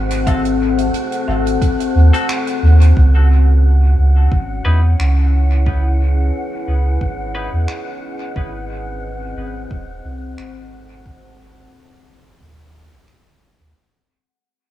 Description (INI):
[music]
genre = ambient dub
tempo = 89 BPM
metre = 4/4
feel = swing 54% on 16ths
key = C# minor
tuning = A4 = 439 Hz
[part]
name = deep dark ambient pad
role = sustained chords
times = 0.0-13.8 s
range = B#3 to D#5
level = -23 LUFS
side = left 4 dB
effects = chorus, built-in reverb
[part]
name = soft dub sub bass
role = bass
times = 0.0-13.7 s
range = D#1 to E2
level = -13 LUFS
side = equal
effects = none
[part]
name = wind-like tuned noise texture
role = texture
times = 0.0-13.8 s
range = F#5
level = -30 LUFS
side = equal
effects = built-in reverb
[part]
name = soft-mallet drum kit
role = drums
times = 0.1-13.2 s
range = finger snaps, hi-hat, woodblock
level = -29 LUFS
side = equal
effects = small room ambience, dub echo
[part]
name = electronic kick drum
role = drums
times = 0.3-12.6 s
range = none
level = -19 LUFS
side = equal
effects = small room ambience
[part]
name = semi-hollow electric guitar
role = stabs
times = 2.1-7.5 s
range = B#3 to B4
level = -27 LUFS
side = left 3 dB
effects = dub echo
[sound]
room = studio reverb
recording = echo-heavy mix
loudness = -12 LUFS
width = side -13 dB against mid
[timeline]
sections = 0.0-3.0 A section; 3.0-13.8 B section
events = band accent 2.3-2.6; fade-out 3.0-13.8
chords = 0.0 G#7b9; 3.0 C#m9; 8.4 G#7b9